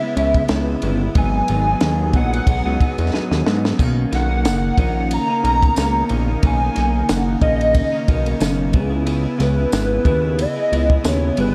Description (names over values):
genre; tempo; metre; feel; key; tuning
indie pop, bedroom pop; 91 BPM; 4/4; swing 55% on 16ths; B major; A4 = 439 Hz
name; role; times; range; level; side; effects
warbly nostalgic lead; melody; 0.0-11.5 s; B4 to A#5; -24 LUFS; equal; ensemble chorus, tape echo
electric guitar through a small old amp; accompaniment; 0.0-11.5 s; G#2 to G#4; -26 LUFS; equal; analog chorus, vibrato effect
warm analog pad; sustained chords; 0.0-11.5 s; C#3 to G#4; -31 LUFS; equal; chorus
fat analog bass; bass; 0.2-11.5 s; F#1 to G#2; -22 LUFS; equal; none
compact cocktail drum kit; drums; 0.2-11.5 s; kick drum, ride cymbal, snare drum, splash cymbal; -23 LUFS; equal; none
tambourine; percussion; 4.5-11.2 s; none; -37 LUFS; equal; none
room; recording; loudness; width
light reverb, small room ambience; dark, warm production; -18 LUFS; mono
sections
0.0-11.5 A section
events
drum fill 3.1-3.8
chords
0.0 C#m7; 1.2 G#m7; 3.8 Bmaj9; 8.7 C#m7